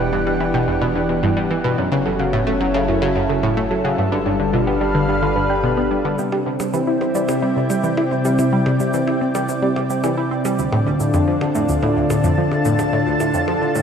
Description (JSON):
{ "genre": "ambient, sequencer-driven space music", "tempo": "109 BPM", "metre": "4/4", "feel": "straight", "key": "unclear", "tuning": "A4 = 441 Hz", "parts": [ { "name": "lush unison pad", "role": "sustained chords", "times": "0.0-13.8 s", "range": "C3 to A5", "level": "-19 LUFS", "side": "equal", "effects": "chorus" }, { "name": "thumb-piano-like synth pluck", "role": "arpeggios", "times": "0.0-6.0 s", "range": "C#4 to G5", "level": "-27 LUFS", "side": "right 3 dB", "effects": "chorus, auto-pan, tape echo" }, { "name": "analog pluck", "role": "riff", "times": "0.0-13.8 s", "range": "D2 to E4", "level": "-20 LUFS", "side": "equal", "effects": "chorus, phaser, tape echo" }, { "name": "warm sub bass", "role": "bass", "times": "0.0-6.2 s", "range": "E1 to G1", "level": "-29 LUFS", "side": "equal", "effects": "none" }, { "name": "cabasa and percussion blips", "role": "percussion", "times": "6.2-13.8 s", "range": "none", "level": "-32 LUFS", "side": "right 2 dB", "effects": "tape echo" } ], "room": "wet lush hall reverb, RT60 2.6 s", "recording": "dreamy mix soaked in reverb", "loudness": "-16 LUFS", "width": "side -7 dB against mid", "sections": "0.0-6.2 A section; 6.2-13.8 B section", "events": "none", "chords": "0.0 Em7; 1.8 F#m7; 4.0 G7; 6.2 Cadd9; 10.6 Dm" }